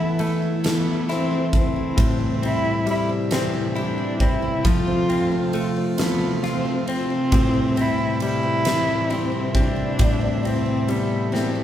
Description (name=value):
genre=six-eight pop ballad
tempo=45 BPM (dotted quarters)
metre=6/8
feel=straight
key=A minor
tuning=A4 = 440 Hz
part: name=dark cello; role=melody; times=0.0-11.6 s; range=A3 to F4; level=-25 LUFS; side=equal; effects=none
part: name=direct-recorded clean electric guitar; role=accompaniment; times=0.0-11.6 s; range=A2 to F4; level=-25 LUFS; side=left 2 dB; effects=none
part: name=airy breathy pad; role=sustained chords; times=0.0-11.6 s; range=C3 to F4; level=-27 LUFS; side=equal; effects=chorus
part: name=picked steel-string acoustic guitar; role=arpeggios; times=0.0-11.6 s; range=E3 to A4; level=-30 LUFS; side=right 4 dB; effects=none
part: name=huge arena drum kit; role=drums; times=0.2-11.5 s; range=kick drum, ride cymbal, snare drum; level=-25 LUFS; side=right 1 dB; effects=none
room=moderate large studio reverb, RT60 1.1 s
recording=band playing live in one room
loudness=-19 LUFS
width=side -11 dB against mid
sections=0.0-11.6 A section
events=drum fill 11.3-11.6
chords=0.0 Esus4; 2.0 Am7; 4.7 F; 7.3 Am7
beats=0.64 | 1.98 3.31 | 4.65 5.99 | 7.32 8.66 | 9.99 11.33